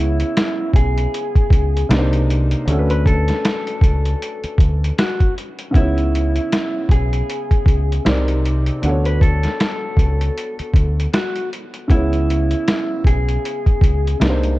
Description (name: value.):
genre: lo-fi hip hop.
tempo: 78 BPM.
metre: 4/4.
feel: swing 58% on 16ths.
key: unclear.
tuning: A4 = 438 Hz.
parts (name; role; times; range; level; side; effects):
electric guitar through a small old amp; melody; 0.0-14.2 s; E4 to B4; -24 LUFS; equal; low-pass filter.
felt-muted upright piano; accompaniment; 0.0-14.6 s; C3 to D5; -24 LUFS; equal; low-pass filter.
deep dub fingered electric bass; bass; 0.0-14.6 s; B1 to D2; -18 LUFS; equal; none.
lo-fi sampler-style drum kit; drums; 0.2-14.6 s; hi-hat, kick drum, snare drum; -17 LUFS; equal; vintage 12-bit sampler grit.
room: digital ambience.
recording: dark, warm production.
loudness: -15 LUFS.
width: side -18 dB against mid.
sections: 0.0-5.7 A section; 5.7-14.6 B section.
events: none.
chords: 0.0 C#m7; 1.9 Cm7; 2.7 Bm7; 5.7 C#m7; 8.1 Cm7; 8.8 Bm7; 11.9 C#m7.